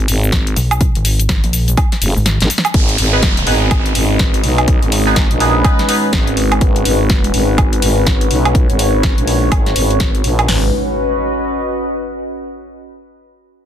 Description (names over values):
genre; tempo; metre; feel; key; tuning
bass house; 124 BPM; 4/4; swing 61% on 16ths; G# minor; A4 = 440 Hz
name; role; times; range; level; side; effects
dark analog pad; sustained chords; 0.0-10.7 s; G#3 to C#5; -23 LUFS; left 3 dB; chorus, sidechain pumping
growling FM bass; bass; 0.0-10.7 s; F#1 to B1; -16 LUFS; equal; tube saturation, sidechain pumping
house drum kit; drums; 0.1-10.5 s; hi-hat, shaker, snare drum, woodblock; -18 LUFS; equal; none
house drum kit; drums; 0.3-10.6 s; hi-hat, kick drum, snare drum; -15 LUFS; equal; none
pulsing pluck wobble bass; bass; 0.6-2.4 s; G#1 to B1; -15 LUFS; equal; chorus, overdrive, sidechain pumping
downlifter and impact; sound effects; 2.7-6.6, 10.6-12.4 s; none; -24 LUFS; right 1 dB; none
warbly tape-like pad; texture; 3.4-12.4 s; C#4 to D#5; -20 LUFS; equal; chorus, built-in reverb, sidechain pumping
band-passed chord stab; stabs; 3.1-6.0 s; B3 to B4; -19 LUFS; right 2 dB; phaser, wide subtle chorus, sidechain pumping, tape echo
room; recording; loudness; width
little or no reverb; dense, heavily limited modern master; -12 LUFS; side -10 dB against mid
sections
0.0-2.7 A section; 2.7-10.5 B section; 10.5-12.4 C section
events
drop 0.0-2.7; kick drops out 2.3-2.7; drum fill 2.3-2.7; filter sweep on FM bass 2.7-10.5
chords
0.0 G#m